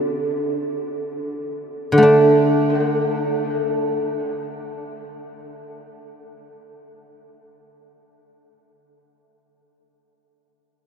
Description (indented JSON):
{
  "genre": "chinese traditional, Chinese solo plucked strings",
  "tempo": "free time",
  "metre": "none",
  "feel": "none",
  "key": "unclear",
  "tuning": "A4 = 440 Hz",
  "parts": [
    { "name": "guzheng", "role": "solo", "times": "0.0-8.6 s", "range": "D3 to D4", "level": "-18 LUFS", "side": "equal", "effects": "tape echo" }
  ],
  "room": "wet huge ambient reverb, RT60 8.6 s",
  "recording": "dreamy mix soaked in reverb",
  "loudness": "-17 LUFS",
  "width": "side -7 dB against mid",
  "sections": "0.0-2.0 A section; 2.0-8.1 B section",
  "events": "slowing down 0.0-2.0",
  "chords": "none"
}